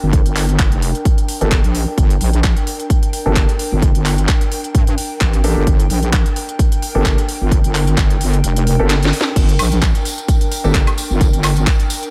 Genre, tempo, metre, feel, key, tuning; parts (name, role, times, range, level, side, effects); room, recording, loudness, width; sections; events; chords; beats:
bass house; 130 BPM; 4/4; swing 55% on 16ths; G minor; A4 = 441 Hz
wobble bass; bass; 0.0-11.7 s; F1 to G2; -18 LUFS; equal; chorus, overdrive, sidechain pumping
airy breathy pad; texture; 0.0-12.1 s; D4 to G5; -29 LUFS; equal; chorus, sidechain pumping
electronic kick drum; drums; 0.1-11.8 s; -17 LUFS; equal; overdrive
garage drum kit; drums; 0.1-12.1 s; crash cymbal, handclaps, hi-hat, snare drum, woodblock; -25 LUFS; equal
warm baby grand piano; stabs; 1.4-10.9 s; Bb3 to A4; -26 LUFS; equal; sidechain pumping, low-pass filter, delay
tambourine; percussion; 9.4-12.1 s; -32 LUFS; equal
digital ambience; -16 LUFS; mono
0.0-12.1 A section
filter sweep on grand piano 0.0-12.1; kick drops out 8.4-9.4; drum fill 8.9-9.4
0.0 Gmadd9
| 0.13 0.59 1.05 1.52 | 1.98 2.44 2.90 3.36 | 3.82 4.29 4.75 5.21 | 5.67 6.13 6.59 7.05 | 7.52 7.98 8.44 8.90 | 9.36 9.82 10.29 10.75 | 11.21 11.67